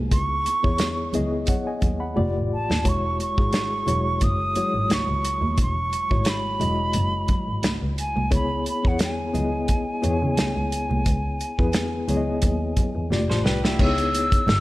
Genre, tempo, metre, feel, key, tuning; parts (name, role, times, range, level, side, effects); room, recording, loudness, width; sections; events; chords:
lush 1970s-style soul; 88 BPM; 4/4; swing 54% on 16ths; A4 = 440 Hz
reed electric piano; accompaniment; 0.0-14.5 s; F#3 to B5; -27 LUFS; left 2 dB; overdrive, fast tremolo
rich double bass; bass; 0.0-14.6 s; E1 to C#3; -26 LUFS; equal
hollow concert flute; melody; 0.1-14.6 s; F#5 to E6; -27 LUFS; right 1 dB
warm soul drum kit; drums; 0.1-14.6 s; crash cymbal, hi-hat, kick drum, snare drum; -24 LUFS; equal
congas; percussion; 0.1-14.6 s; -33 LUFS; right 3 dB
electric guitar through a small old amp; riff; 13.3-14.0 s; E4 to C5; -31 LUFS; right 1 dB
light reverb, small room ambience; lossy compression artefacts; -20 LUFS; side -18 dB against mid
0.0-13.8 A section
drum fill 2.2-2.9, 13.1-13.8
0.0 C#m7; 2.2 F69; 2.9 E69; 8.3 C#m7; 13.1 F69; 13.8 C#m9